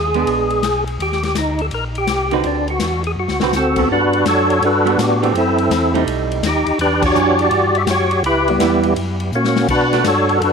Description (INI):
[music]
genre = soul jazz organ trio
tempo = 166 BPM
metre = 4/4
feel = swing 66% on 8ths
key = G major from 3.9 s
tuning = A4 = 440 Hz
[part]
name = percussive tonewheel organ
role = melody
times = 0.0-10.5 s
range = G3 to E5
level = -16 LUFS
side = equal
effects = slow rotary speaker, overdrive, chorus vibrato, tape echo
[part]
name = mellow tonewheel organ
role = bass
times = 0.0-10.5 s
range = Bb1 to B2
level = -22 LUFS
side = left 1 dB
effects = slow rotary speaker
[part]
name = archtop guitar, miked and amplified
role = accompaniment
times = 0.1-10.0 s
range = D3 to Cb5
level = -21 LUFS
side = right 14 dB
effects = none
[part]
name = swinging big-band drum kit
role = drums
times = 0.1-10.5 s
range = crash cymbal, hi-hat, kick drum, ride cymbal, snare drum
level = -25 LUFS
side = left 6 dB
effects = none
[sound]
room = light reverb, small room ambience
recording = 1960s-style stereo with parts hard left and right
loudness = -14 LUFS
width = side -6 dB against mid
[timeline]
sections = 0.0-3.9 A section; 3.9-10.5 B section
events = drum fill 3.2-3.5, 9.3-9.7; band accent 7.0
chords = 0.3 Bb7b9; 1.0 Ebmaj7; 2.4 D13; 3.9 Gmaj9; 5.3 F#m7b5; 6.1 B7b13; 6.8 Em9; 8.2 C#m7b5; 9.0 F#; 9.7 Bm7